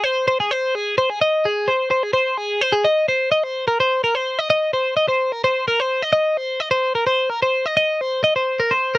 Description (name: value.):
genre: rock.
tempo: 255 BPM (eighths).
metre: 7/8.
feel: straight.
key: unclear.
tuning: A4 = 440 Hz.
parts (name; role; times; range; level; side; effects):
twelve-string electric guitar; solo; 0.0-9.0 s; Ab4 to Eb5; -17 LUFS; equal; warbly pitch drift.
room: little or no reverb.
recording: dry, close 1970s-style studio recording.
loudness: -17 LUFS.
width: side -19 dB against mid.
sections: 0.0-2.9 A section; 2.9-9.0 B section.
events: none.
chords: none.